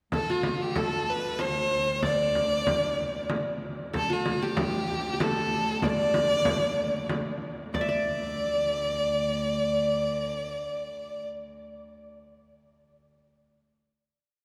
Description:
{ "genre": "Arabic maqam ensemble", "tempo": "95 BPM", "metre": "3/4", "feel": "straight", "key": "D maqam rast", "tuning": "A4 = 440 Hz", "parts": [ { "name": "clear violin", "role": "melody", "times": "0.1-11.3 s", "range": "F4+47c to D5", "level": "-30 LUFS", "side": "equal", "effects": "none" }, { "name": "qanun", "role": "second line", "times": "0.1-11.4 s", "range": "F#4-50c to E5", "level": "-36 LUFS", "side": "equal", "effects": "none" }, { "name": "rich chamber cello section", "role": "drone", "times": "0.1-11.2 s", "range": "D2", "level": "-39 LUFS", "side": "equal", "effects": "none" }, { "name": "frame drum", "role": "percussion", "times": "0.1-8.0 s", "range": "none", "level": "-34 LUFS", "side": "equal", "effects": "none" } ], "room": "wet cathedral reverb, RT60 4.9 s", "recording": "recorded in a church or concert hall", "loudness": "-28 LUFS", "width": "mono", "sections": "0.1-7.7 A section; 7.7-11.5 final chord", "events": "none", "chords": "none" }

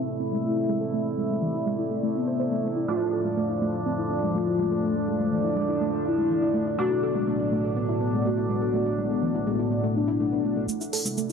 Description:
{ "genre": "melodic techno", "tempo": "123 BPM", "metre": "4/4", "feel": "straight", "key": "unclear", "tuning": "A4 = 440 Hz", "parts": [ { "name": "dark analog pad", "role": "sustained chords", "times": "0.0-11.3 s", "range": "A2 to D5", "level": "-30 LUFS", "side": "left 2 dB", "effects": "chorus" }, { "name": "sync-sweep polysynth", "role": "stabs", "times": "0.0-11.3 s", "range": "A2 to E4", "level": "-30 LUFS", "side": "right 2 dB", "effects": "chorus, vintage 12-bit sampler grit, dub echo" }, { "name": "deep dark ambient pad", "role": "texture", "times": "0.0-11.3 s", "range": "A3 to A5", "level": "-32 LUFS", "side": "right 1 dB", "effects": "chorus, built-in reverb" }, { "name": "soft round pluck", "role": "arpeggios", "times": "0.1-11.3 s", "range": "E3 to C5", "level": "-30 LUFS", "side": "right 1 dB", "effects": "chorus, dub echo" }, { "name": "expressive synth lead", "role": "melody", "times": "0.4-11.3 s", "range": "B3 to F#4", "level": "-29 LUFS", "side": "left 3 dB", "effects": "wide subtle chorus, ping-pong delay" }, { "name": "electronic shaker and hi-hat", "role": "drums", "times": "10.7-11.3 s", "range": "none", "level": "-30 LUFS", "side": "right 1 dB", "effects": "overdrive, high-pass filter on perc, high-pass filter on hats" } ], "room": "moderate huge ambient reverb, RT60 6.6 s", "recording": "low-pass filter", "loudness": "-23 LUFS", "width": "side -6 dB against mid", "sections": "0.0-10.7 A section", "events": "filter sweep on analog synth lead 0.0-10.7; filter sweep on analog synth pad 0.0-10.7; filter sweep 0.0-10.7", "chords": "0.0 Am; 2.9 Dm; 6.8 Bm/A; 10.7 Am" }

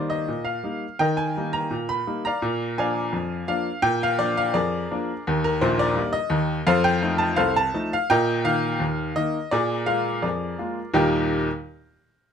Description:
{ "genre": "ragtime piano", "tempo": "84 BPM", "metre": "2/4", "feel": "straight", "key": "Eb major", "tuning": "A4 = 441 Hz", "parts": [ { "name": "clear upright piano", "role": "solo", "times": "0.0-11.5 s", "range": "Bb1 to Cb6", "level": "-21 LUFS", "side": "left 1 dB", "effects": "none" } ], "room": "little or no reverb", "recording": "close, detailed microphones", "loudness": "-21 LUFS", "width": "side -7 dB against mid", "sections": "0.0-11.0 A section; 11.0-12.3 B section", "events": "none", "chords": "0.0 Eb; 2.4 Bb7; 5.3 Eb; 6.7 F7; 8.1 Eb5/Bb; 9.5 Bb7; 11.0 Eb" }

